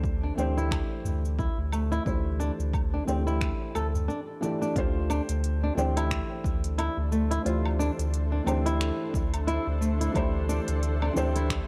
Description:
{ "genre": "organic downtempo", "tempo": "89 BPM", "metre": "4/4", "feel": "swing 58% on 16ths", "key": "unclear", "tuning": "A4 = 440 Hz", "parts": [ { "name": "felt-muted upright piano", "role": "accompaniment", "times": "0.0-11.7 s", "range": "E3 to D5", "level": "-36 LUFS", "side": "equal", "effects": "sidechain pumping, tape echo" }, { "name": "warm sub bass", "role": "bass", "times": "0.0-11.6 s", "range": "D2", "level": "-30 LUFS", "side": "equal", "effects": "none" }, { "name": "deep house drum kit", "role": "drums", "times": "0.0-11.7 s", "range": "finger snaps, hi-hat, shaker, woodblock", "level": "-40 LUFS", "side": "equal", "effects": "none" }, { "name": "electronic kick drum", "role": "drums", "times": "0.0-11.7 s", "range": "none", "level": "-33 LUFS", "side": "equal", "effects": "none" }, { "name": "flamenco guitar", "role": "arpeggios", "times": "0.2-11.7 s", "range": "A3 to A4", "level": "-34 LUFS", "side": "equal", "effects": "tape echo" }, { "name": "udu", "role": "percussion", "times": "1.1-4.1 s", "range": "none", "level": "-38 LUFS", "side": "equal", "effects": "none" }, { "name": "granular cloud pad", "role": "sustained chords", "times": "6.7-11.7 s", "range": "D4 to E5", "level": "-40 LUFS", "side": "equal", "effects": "built-in reverb, sidechain pumping" } ], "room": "light reverb", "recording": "dark, warm production", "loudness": "-28 LUFS", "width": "mono", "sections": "0.0-4.8 A section; 4.8-11.7 B section", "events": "none", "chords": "0.0 Am7/D; 4.8 D7(no3); 10.2 Am7/D" }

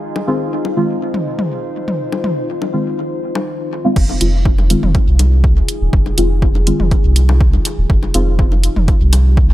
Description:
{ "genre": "dub techno", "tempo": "122 BPM", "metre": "4/4", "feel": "straight", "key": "F minor", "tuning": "A4 = 436 Hz", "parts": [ { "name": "deep dark ambient pad", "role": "sustained chords", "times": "0.0-9.5 s", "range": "Eb4 to C5", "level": "-23 LUFS", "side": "left 2 dB", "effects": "chorus, built-in reverb, sidechain pumping" }, { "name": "electronic bongos and toms", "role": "percussion", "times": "0.2-9.2 s", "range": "none", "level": "-24 LUFS", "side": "left 2 dB", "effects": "overdrive, sidechain pumping on perc, sidechain pumping on toms, dub echo" }, { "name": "deep mellow chord stab", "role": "stabs", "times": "0.3-8.3 s", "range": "Eb3 to F4", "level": "-19 LUFS", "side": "equal", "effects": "chorus, phaser, sidechain pumping, dub echo" }, { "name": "soft dub sub bass", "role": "bass", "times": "4.0-9.5 s", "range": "Eb1 to C2", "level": "-13 LUFS", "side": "equal", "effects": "sidechain pumping" }, { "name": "deep house drum kit", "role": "drums", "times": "4.0-9.2 s", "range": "crash cymbal, hi-hat", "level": "-22 LUFS", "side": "right 1 dB", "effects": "overdrive, low-pass filter on cymbals, low-pass filter on hats" }, { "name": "electronic kick drum", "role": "drums", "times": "4.0-9.5 s", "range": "none", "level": "-14 LUFS", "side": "equal", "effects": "overdrive" } ], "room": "little or no reverb", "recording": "echo-heavy mix", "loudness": "-12 LUFS", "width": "side -15 dB against mid", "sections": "0.0-4.0 A section; 4.0-9.5 B section", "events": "none", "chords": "0.0 Fm7" }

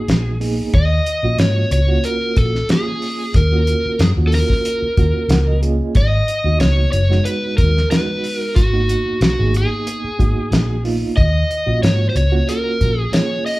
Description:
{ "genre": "straight-eighth soul blues", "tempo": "92 BPM", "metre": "4/4", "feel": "swing 53% on 16ths", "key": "Eb minor", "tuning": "A4 = 438 Hz", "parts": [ { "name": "overdriven slide guitar", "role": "melody", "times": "0.0-13.6 s", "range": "Gb4 to Eb5", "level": "-21 LUFS", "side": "equal", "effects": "none" }, { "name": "mellow reed electric piano", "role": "accompaniment", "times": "0.0-13.6 s", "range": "Ab3 to Gb5", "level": "-24 LUFS", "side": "right 3 dB", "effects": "fast tremolo" }, { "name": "vintage muted fingered electric bass", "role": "bass", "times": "0.1-13.1 s", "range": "Gb1 to Ab2", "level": "-17 LUFS", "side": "equal", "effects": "none" }, { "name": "cloth-damped thuddy drum kit", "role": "drums", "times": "0.1-13.6 s", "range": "hi-hat, kick drum, snare drum", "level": "-18 LUFS", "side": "equal", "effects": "none" } ], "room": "moderate large studio reverb, RT60 0.9 s", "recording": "band playing live in one room", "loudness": "-14 LUFS", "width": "side -19 dB against mid", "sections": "0.0-13.6 A section", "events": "reed electric piano fill 5.0-6.0", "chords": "0.0 Abm7; 0.7 Ebm7; 6.0 Abm7; 11.2 Ebm7" }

